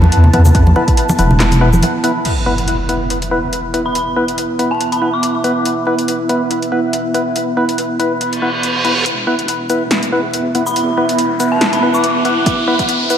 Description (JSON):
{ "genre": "deep dubstep", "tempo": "141 BPM", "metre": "4/4", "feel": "swing 55% on 16ths, half-time", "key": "unclear", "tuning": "A4 = 440 Hz", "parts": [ { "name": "dark analog pad", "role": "sustained chords", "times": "0.0-13.2 s", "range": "B3 to A5", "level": "-19 LUFS", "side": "right 1 dB", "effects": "chorus" }, { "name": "deep soft wobble bass", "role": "bass", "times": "0.0-1.8, 9.1-13.2 s", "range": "E1 to E2", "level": "-12 LUFS", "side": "equal", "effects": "chorus, high-pass filter" }, { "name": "congas", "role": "percussion", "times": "0.0-1.9 s", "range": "none", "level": "-18 LUFS", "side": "right 1 dB", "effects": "dub echo" }, { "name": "deep house drum kit", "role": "drums", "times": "0.1-13.2 s", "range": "crash cymbal, handclaps, hi-hat, shaker, snare drum", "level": "-20 LUFS", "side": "equal", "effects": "overdrive" }, { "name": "percussive organ stab", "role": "stabs", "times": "0.3-13.2 s", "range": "B3 to B4", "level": "-18 LUFS", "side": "left 1 dB", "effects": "chorus, dub echo" }, { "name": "electronic kick drum", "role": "drums", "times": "0.5-1.0, 12.5-12.9 s", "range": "none", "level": "-16 LUFS", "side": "equal", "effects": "overdrive" }, { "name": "impact, reverse cymbal and riser", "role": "sound effects", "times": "2.2-4.0, 8.3-13.2 s", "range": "none", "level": "-21 LUFS", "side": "right 1 dB", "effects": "none" }, { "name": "dark detuned synth bell", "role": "melody", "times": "3.9-5.7, 10.7-12.5 s", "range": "A5 to D6", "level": "-20 LUFS", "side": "left 1 dB", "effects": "chorus, dub echo" } ], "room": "wet lush hall reverb, RT60 2.2 s", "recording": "dreamy mix soaked in reverb, vinyl crackle, high-pass filter", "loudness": "-12 LUFS", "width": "side -9 dB against mid", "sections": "0.0-2.2 A section; 2.2-9.1 B section; 9.1-13.2 C section", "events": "break 1.8-2.2; impact 2.2-4.0; reverse cymbal 8.3-9.1; build-up 9.1-13.2; riser 9.1-13.2", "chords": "0.0 E5", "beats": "0.12 | 0.55 0.97 1.40 1.82 | 2.25 2.67 3.10 3.53 | 3.95 4.38 4.80 5.23 | 5.65 6.08 6.50 6.93 | 7.36 7.78 8.21 8.63 | 9.06 9.48 9.91 10.34 | 10.76 11.19 11.61 12.04 | 12.46 12.89" }